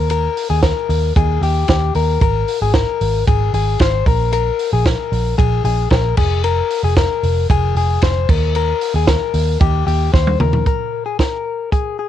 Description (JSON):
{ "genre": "jangly indie pop", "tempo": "114 BPM", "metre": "4/4", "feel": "straight", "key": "unclear", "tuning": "A4 = 440 Hz", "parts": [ { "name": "direct-recorded clean electric guitar", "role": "arpeggios", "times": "0.0-12.1 s", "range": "G4 to C5", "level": "-19 LUFS", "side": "left 11 dB", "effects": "cassette tape, analog delay" }, { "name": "vintage muted picked electric bass", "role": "bass", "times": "0.0-10.6 s", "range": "F1 to Eb2", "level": "-17 LUFS", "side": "right 2 dB", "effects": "none" }, { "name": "compact cocktail drum kit", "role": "drums", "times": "0.1-11.8 s", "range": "crash cymbal, hi-hat, kick drum, ride cymbal, snare drum, toms", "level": "-18 LUFS", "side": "right 2 dB", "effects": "cassette tape" } ], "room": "light reverb", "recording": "home recording on cassette", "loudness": "-14 LUFS", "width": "side -11 dB against mid", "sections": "0.0-10.7 A section; 10.7-12.1 B section", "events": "drum fill 10.1-10.7", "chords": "0.0 Eb; 2.2 Ab; 4.1 Absus2/Bb; 6.2 Fm; 8.3 Eb; 10.7 N.C.", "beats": "| 0.10 0.63 1.15 1.68 | 2.21 2.74 3.27 3.79 | 4.32 4.85 5.38 5.91 | 6.43 6.96 7.49 8.02 | 8.55 9.08 9.61 10.13 | 10.66 11.20 11.72" }